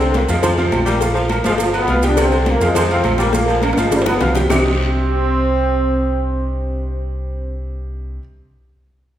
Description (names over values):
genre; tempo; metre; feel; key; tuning
latin, salsa; 207 BPM; 4/4; straight; C minor; A4 = 440 Hz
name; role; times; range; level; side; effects
clear trombone section; melody; 0.0-7.6 s; G2 to F4; -20 LUFS; right 1 dB; none
clear saxophone section; second line; 0.0-4.6 s; C3 to G3; -23 LUFS; left 1 dB; none
bright upright piano; accompaniment; 0.0-8.2 s; C3 to F6; -22 LUFS; right 1 dB; none
fingered electric bass; bass; 0.0-8.2 s; G1 to F2; -20 LUFS; equal; none
congas; percussion; 0.0-4.6 s; none; -25 LUFS; left 2 dB; none
maracas; percussion; 0.0-4.6 s; none; -33 LUFS; right 5 dB; none
agogo bells and timbales; percussion; 0.1-4.6 s; none; -24 LUFS; right 3 dB; none
cowbell and bongos; percussion; 0.1-4.6 s; none; -25 LUFS; left 4 dB; none
guiro; percussion; 0.2-4.6 s; none; -32 LUFS; left 2 dB; none
claves; percussion; 0.4-4.6 s; none; -31 LUFS; left 1 dB; none
room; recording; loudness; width
wet recital hall reverb, RT60 1.4 s; recorded in a church or concert hall; -14 LUFS; side -11 dB against mid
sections
0.0-4.5 A section; 4.5-6.8 B section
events
drum fill 3.3-4.5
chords
0.4 Fm; 1.0 Bb5; 1.6 G7; 2.2 Csus2; 2.8 Fm; 3.3 Bb5; 3.9 G7; 4.5 Cmadd9